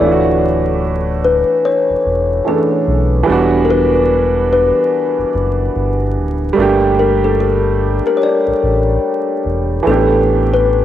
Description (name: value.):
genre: lo-fi hip hop.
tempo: 73 BPM.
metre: 4/4.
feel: swing 61% on 16ths.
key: D major.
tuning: A4 = 440 Hz.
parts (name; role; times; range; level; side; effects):
kalimba; melody; 0.0-10.8 s; G4 to D5; -15 LUFS; left 4 dB; low-pass filter, cassette tape.
warm upright piano; accompaniment; 0.0-10.8 s; E3 to A4; -16 LUFS; right 4 dB; cassette tape, low-pass filter.
sub bass with octave; bass; 0.0-10.8 s; D1 to B1; -18 LUFS; equal; none.
room: moderate lush hall reverb, RT60 2.4 s.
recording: home recording on cassette, vinyl crackle.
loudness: -12 LUFS.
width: side -11 dB against mid.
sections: 0.0-10.8 A section.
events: none.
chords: 0.0 Dmaj9; 3.3 Em9; 6.6 Gmadd9; 9.8 A7sus4.